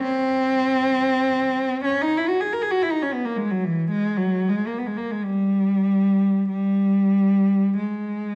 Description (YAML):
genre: classical, free, expressive piece for unaccompanied cello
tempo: 45-59 BPM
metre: 3/4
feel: rubato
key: unclear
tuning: A4 = 442 Hz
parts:
  - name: rich cello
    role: solo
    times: 0.0-8.3 s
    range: E3 to A#4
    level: -22 LUFS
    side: equal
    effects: none
room: moderate recital hall reverb, RT60 1.4 s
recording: dark, warm production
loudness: -22 LUFS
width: mono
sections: 0.0-8.3 A section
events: none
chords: none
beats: | 0.03 1.05 2.08 | 3.10 4.13 5.22 | 6.47 7.77